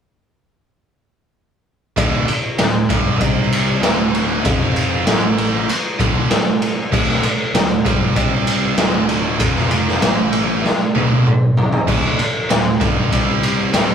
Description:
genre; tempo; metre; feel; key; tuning
hard rock; 97 BPM; 4/4; straight; D minor; A4 = 445 Hz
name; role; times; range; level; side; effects
heavy high-gain guitar; riff; 2.0-13.9 s; D2 to C4; -21 LUFS; right 5 dB; distortion
sludgy distorted guitar; riff; 2.0-13.9 s; D2 to C4; -24 LUFS; left 7 dB; overdrive
picked electric bass; bass; 2.0-13.9 s; D1 to C2; -27 LUFS; left 1 dB; none
raw garage drum kit; drums; 2.0-13.9 s; crash cymbal, kick drum, ride cymbal, snare drum, toms; -16 LUFS; equal; none
room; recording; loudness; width
moderate studio reverb, RT60 0.5 s; rough rehearsal-room recording, tube saturation; -14 LUFS; side -8 dB against mid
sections
2.0-13.9 A section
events
drum fill 10.6-11.9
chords
2.0 D5; 3.2 C5; 3.8 D5; 4.4 F5; 5.1 A5; 5.7 D5; 8.2 C5; 8.8 D5; 9.4 F5; 10.0 A5; 10.6 D5; 13.1 C5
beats
| 1.97 2.59 3.21 3.83 | 4.45 5.07 5.68 6.30 | 6.92 7.54 8.16 8.78 | 9.40 10.02 10.64 11.25 | 11.87 12.49 13.11 13.73

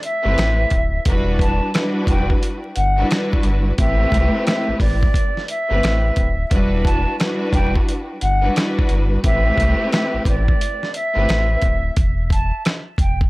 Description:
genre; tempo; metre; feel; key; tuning
hip hop, boom-bap hip-hop; 88 BPM; 4/4; swing 62% on 16ths; unclear; A4 = 439 Hz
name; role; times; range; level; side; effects
concert flute; melody; 0.0-13.2 s; D5 to A5; -23 LUFS; equal; high-pass filter, low-pass filter, analog delay
dusty soul sampler-style drum kit; drums; 0.0-13.3 s; hi-hat, kick drum, rim click, snare drum; -19 LUFS; equal; none
warm studio string section; accompaniment; 0.2-11.6 s; G3 to B4; -23 LUFS; equal; high-pass filter, low-pass filter
sub bass with octave; bass; 0.3-13.3 s; D1 to C2; -20 LUFS; equal; tube saturation
room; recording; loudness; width
little or no reverb; dry, gritty hardware recording, transformer saturation, vinyl crackle; -16 LUFS; side -20 dB against mid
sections
0.0-13.3 A section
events
none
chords
0.0 Am9; 1.1 Em9; 3.8 Am9; 6.5 Em9; 9.2 Am9; 12.0 N.C.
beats
0.38 | 1.06 1.74 2.43 3.11 | 3.79 4.47 5.15 5.83 | 6.52 7.20 7.88 8.56 | 9.24 9.93 10.61 11.29 | 11.97 12.65

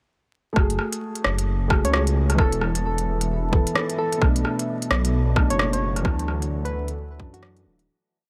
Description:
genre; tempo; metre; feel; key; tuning
future garage; 131 BPM; 4/4; swing 61% on 16ths; F# minor; A4 = 440 Hz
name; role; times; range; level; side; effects
felt-muted upright piano; accompaniment; 0.5-7.9 s; B2 to A4; -30 LUFS; equal; sidechain pumping, delay
swelling detuned saw bass; bass; 0.6-7.9 s; D1 to F#2; -26 LUFS; equal; tube saturation, sidechain pumping
electronic kick drum; drums; 0.6-7.3 s; none; -22 LUFS; equal; overdrive
organic electronic drum kit; drums; 0.6-7.9 s; hi-hat, rim click; -29 LUFS; equal; overdrive
soft struck synth lead; melody; 1.8-7.9 s; F#4 to C#5; -32 LUFS; equal; chorus, digital delay
deep dark ambient pad; sustained chords; 3.1-7.9 s; B3 to B5; -38 LUFS; equal; chorus, built-in reverb, sidechain pumping
room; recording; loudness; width
light reverb, digital ambience; vinyl crackle; -23 LUFS; mono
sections
0.6-7.9 groove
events
fade-out 5.4-7.9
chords
0.6 F#madd9; 2.4 Esus4; 4.2 Bm7; 6.1 Dadd9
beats
| 0.56 1.02 1.47 1.93 | 2.39 2.85 3.31 3.76 | 4.22 4.68 5.14 5.60 | 6.05 6.51 6.97 7.43

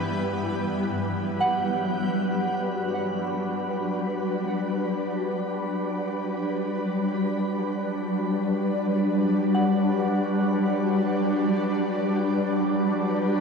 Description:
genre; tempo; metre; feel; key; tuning
ambient; free time; none; none; G major; A4 = 440 Hz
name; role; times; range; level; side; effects
shimmering ambient pad; sustained chords; 0.0-13.4 s; G2 to B4; -23 LUFS; equal; chorus, built-in reverb, phaser
soft synth bell; arpeggios; 0.0-13.4 s; F#5; -32 LUFS; right 2 dB; chorus, tape echo
room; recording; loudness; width
wet shimmer reverb, RT60 6.9 s; none; -23 LUFS; side -5 dB against mid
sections
0.4-13.4 A section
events
none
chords
0.4 Gmaj7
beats
free time

